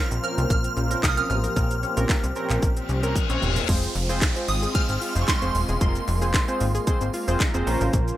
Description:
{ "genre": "dance-pop", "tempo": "113 BPM", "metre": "4/4", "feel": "straight", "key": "F minor", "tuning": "A4 = 439 Hz", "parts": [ { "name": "shimmering bell with halo", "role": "melody", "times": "0.0-7.4 s", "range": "C6 to F6", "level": "-29 LUFS", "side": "right 2 dB", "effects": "ensemble chorus, phaser, digital delay" }, { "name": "warm analog keys", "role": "accompaniment", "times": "0.0-8.2 s", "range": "C4 to Bb5", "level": "-30 LUFS", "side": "right 1 dB", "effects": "chorus, sidechain pumping" }, { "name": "filtered supersaw swell", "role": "sustained chords", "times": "0.0-8.2 s", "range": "Bb2 to C5", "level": "-32 LUFS", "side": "equal", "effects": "sidechain pumping" }, { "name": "analog pluck", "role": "arpeggios", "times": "0.0-8.1 s", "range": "Ab3 to Bb4", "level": "-35 LUFS", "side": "left 2 dB", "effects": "chorus, sidechain pumping, digital delay" }, { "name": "plucky analog bass", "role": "bass", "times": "0.1-8.1 s", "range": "Eb1 to C2", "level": "-25 LUFS", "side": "equal", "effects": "sidechain pumping" }, { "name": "house drum kit", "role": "drums", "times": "0.1-8.2 s", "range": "crash cymbal, handclaps, hi-hat, kick drum, shaker, snare drum, toms", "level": "-25 LUFS", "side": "equal", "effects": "none" }, { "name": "reverse cymbal and downlifter", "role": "sound effects", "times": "2.8-7.9 s", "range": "none", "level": "-32 LUFS", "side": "left 3 dB", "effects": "none" } ], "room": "little or no reverb", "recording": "rough home demo mix", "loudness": "-21 LUFS", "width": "side -14 dB against mid", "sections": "0.0-3.7 A section; 3.7-8.2 B section", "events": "reverse cymbal 2.8-3.7; drum fill 3.2-3.7; synth keys fill 6.9-7.9", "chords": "0.0 Bbmadd9; 3.7 Fm; 7.7 Bbmadd9", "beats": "0.50 1.03 | 1.56 2.09 2.62 3.16 | 3.69 4.22 4.75 5.28 | 5.81 6.34 6.87 7.40 | 7.93" }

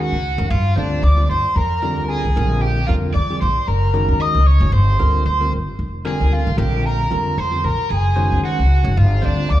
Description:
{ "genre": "jazz", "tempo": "113 BPM", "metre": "4/4", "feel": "swing 55% on 16ths", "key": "unclear", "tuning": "A4 = 437 Hz", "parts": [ { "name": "mellow concert flute", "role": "melody", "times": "0.0-9.6 s", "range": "D5 to Eb6", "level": "-23 LUFS", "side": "right 1 dB", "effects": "slapback echo" }, { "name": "overdriven electric guitar", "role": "second line", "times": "0.0-9.6 s", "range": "D4 to Eb5", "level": "-27 LUFS", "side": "left 1 dB", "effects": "slapback echo" }, { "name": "bell-like tine electric piano", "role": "accompaniment", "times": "0.0-9.5 s", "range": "D3 to Db5", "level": "-24 LUFS", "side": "right 1 dB", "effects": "medium stereo tremolo, slapback echo" }, { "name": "upright bass", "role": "bass", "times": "0.0-9.6 s", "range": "F1 to G2", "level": "-17 LUFS", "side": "equal", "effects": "none" } ], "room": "small room ambience", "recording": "live gig heard through the venue's PA, club ambience", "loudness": "-15 LUFS", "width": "side -13 dB against mid", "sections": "0.0-9.6 A section", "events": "none", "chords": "0.0 Gb69; 0.5 G7(no3); 1.6 Fsus2; 2.4 Bb13; 3.7 Gb69; 4.7 Gm7; 5.8 Fsus2; 6.6 Bb69; 7.9 Gbsus2; 9.0 G5", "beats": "0.50 1.03 | 1.56 2.09 2.62 3.15 | 3.67 4.20 4.73 5.26 | 5.79 6.32 6.85 7.38 | 7.91 8.44 8.97 9.50" }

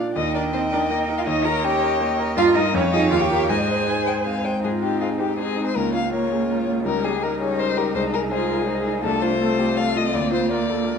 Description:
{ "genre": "quick classical-period movement for piano quintet", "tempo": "163 BPM", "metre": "3/4", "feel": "straight", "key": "Ab major", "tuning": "A4 = 440 Hz", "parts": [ { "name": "bright grand piano", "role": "accompaniment", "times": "0.0-11.0 s", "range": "C2 to C5", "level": "-24 LUFS", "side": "equal", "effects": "none" }, { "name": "warm violin", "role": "melody", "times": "0.2-11.0 s", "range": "F4 to Bb5", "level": "-25 LUFS", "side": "left 8 dB", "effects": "none" }, { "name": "dark violin", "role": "second line", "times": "0.2-11.0 s", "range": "Eb4 to Ab5", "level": "-30 LUFS", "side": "left 2 dB", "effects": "none" }, { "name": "warm cello", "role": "second line", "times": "0.2-11.0 s", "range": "A3 to Bb4", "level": "-25 LUFS", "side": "right 4 dB", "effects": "none" }, { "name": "warm viola", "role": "accompaniment", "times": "0.2-11.0 s", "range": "G3 to Eb5", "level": "-27 LUFS", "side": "right 2 dB", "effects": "none" } ], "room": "moderate recital hall reverb, RT60 1.6 s", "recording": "none", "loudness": "-19 LUFS", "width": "side -6 dB against mid", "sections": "0.0-4.6 A section; 4.6-11.0 B section", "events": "none", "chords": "0.2 Eb; 1.3 Eb7; 2.4 Eb/G; 2.7 Db/F; 3.1 Eb9; 3.5 Ab; 5.8 Bbm/Db; 6.9 Eb7/Db; 8.0 Ab/C; 9.0 F/C; 10.1 Bb/D", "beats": "| 0.16 0.54 0.91 | 1.27 1.64 2.01 | 2.38 2.75 3.12 | 3.50 3.88 4.26 | 4.64 5.02 5.39 | 5.76 6.13 6.49 | 6.86 7.22 7.59 | 7.95 8.32 8.68 | 9.04 9.41 9.78 | 10.15 10.52 10.88" }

